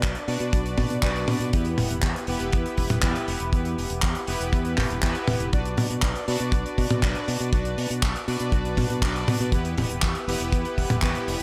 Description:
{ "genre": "italo disco", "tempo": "120 BPM", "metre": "4/4", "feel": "straight", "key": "B minor", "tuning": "A4 = 441 Hz", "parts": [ { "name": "analog synth brass", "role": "stabs", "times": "0.0-11.4 s", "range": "B3 to D5", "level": "-31 LUFS", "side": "equal", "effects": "chorus" }, { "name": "modern bright fingered electric bass", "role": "bass", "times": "0.0-11.4 s", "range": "E1 to B2", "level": "-31 LUFS", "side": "equal", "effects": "tube saturation" }, { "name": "damped 70s drum kit", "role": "drums", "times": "0.0-11.4 s", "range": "handclaps, hi-hat, toms", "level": "-30 LUFS", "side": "equal", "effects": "gated reverb" }, { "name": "kick drum", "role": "drums", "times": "0.0-11.1 s", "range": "none", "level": "-27 LUFS", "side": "equal", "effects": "none" } ], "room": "light reverb, studio reverb", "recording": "none", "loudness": "-25 LUFS", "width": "mono", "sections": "0.0-11.4 A section", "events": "none", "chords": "0.0 Bm; 1.5 Em; 5.5 Bm; 9.5 Em" }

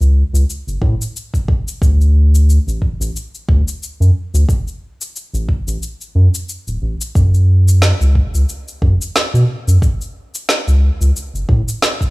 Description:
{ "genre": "organic downtempo", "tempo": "90 BPM", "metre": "4/4", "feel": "swing 56% on 16ths", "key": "F# minor", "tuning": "A4 = 440 Hz", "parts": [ { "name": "round analog bass", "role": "bass", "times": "0.0-11.6 s", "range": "D1 to B2", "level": "-11 LUFS", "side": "equal", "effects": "none" }, { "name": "electronic cabasa and snare drum", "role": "drums", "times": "0.0-12.1 s", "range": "none", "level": "-21 LUFS", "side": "equal", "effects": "none" }, { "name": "electronic kick drum", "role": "drums", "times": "0.8-12.1 s", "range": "none", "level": "-16 LUFS", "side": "equal", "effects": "none" } ], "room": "little or no reverb", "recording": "dry, gritty hardware recording, small room reverb", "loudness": "-13 LUFS", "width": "side -22 dB against mid", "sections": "0.0-12.1 A section", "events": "kick drops out 5.8-7.2", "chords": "none" }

